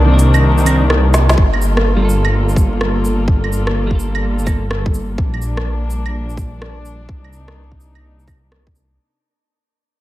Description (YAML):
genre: future garage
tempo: 126 BPM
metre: 4/4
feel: swing 64% on 16ths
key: G minor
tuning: A4 = 440 Hz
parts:
  - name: dark studio string section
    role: sustained chords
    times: 0.0-9.0 s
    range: C3 to A4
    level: -21 LUFS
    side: left 2 dB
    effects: sidechain pumping
  - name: swelling detuned saw bass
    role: bass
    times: 0.0-9.0 s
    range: G1 to C2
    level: -16 LUFS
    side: equal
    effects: sidechain pumping
  - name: clean electric guitar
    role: accompaniment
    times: 0.1-4.6 s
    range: Eb3 to Bb4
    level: -23 LUFS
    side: right 4 dB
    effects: vintage 12-bit sampler grit, sidechain pumping, tape echo
  - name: organic electronic drum kit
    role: drums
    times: 0.2-8.9 s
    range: claves, hi-hat, rim click, shaker, snare drum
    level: -21 LUFS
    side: right 1 dB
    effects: overdrive
  - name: electronic kick drum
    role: drums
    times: 1.4-8.7 s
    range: none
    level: -16 LUFS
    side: equal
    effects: overdrive
room: little or no reverb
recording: vinyl crackle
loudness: -13 LUFS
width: side -15 dB against mid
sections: 0.0-1.4 A section; 1.4-9.0 B section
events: break 0.0-1.4; drum fill 1.1; band accent 1.3; fade-out 1.4-9.0; filter sweep on detuned saw bass 1.4-9.0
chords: 0.0 Cm9; 1.4 Gm9; 5.2 Bb6; 7.1 Cm9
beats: 0.42 0.90 | 1.37 1.85 2.32 2.80 | 3.28 3.75 4.23 4.70 | 5.18 5.66 6.13 6.61 | 7.08 7.56 8.04 8.51